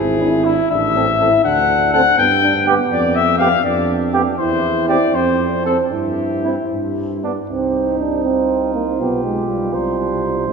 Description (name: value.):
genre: classical, brass quintet.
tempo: 75-83 BPM (dotted quarters).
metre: 6/8.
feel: rubato.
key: C major, C minor from 7.5 s.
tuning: A4 = 440 Hz.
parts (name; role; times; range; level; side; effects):
mellow trumpet; melody; 0.0-10.5 s; D4 to G5; -18 LUFS; left 6 dB; none.
warm euphonium; accompaniment; 0.0-10.5 s; G3 to E4; -20 LUFS; right 3 dB; none.
mellow bass trombone; bass; 0.0-10.5 s; G#1 to G2; -22 LUFS; right 2 dB; none.
dark flugelhorn; second line; 0.2-10.5 s; D4 to C5; -23 LUFS; right 6 dB; none.
mellow French horn; accompaniment; 0.2-10.5 s; B3 to F4; -26 LUFS; left 2 dB; none.
room: wet church reverb, RT60 3.9 s.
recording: minimal, uncompressed stereo recording.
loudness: -14 LUFS.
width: side -5 dB against mid.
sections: 0.0-7.5 A section; 7.5-10.5 A section.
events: none.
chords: 0.0 E7/G#; 0.7 Am; 1.4 D; 2.2 G; 2.9 G7/F (rootless); 4.4 C/E; 5.1 F; 5.9 C/G (rootless); 6.7 N.C.; 7.5 Cm; 9.0 G7/B; 9.7 C5.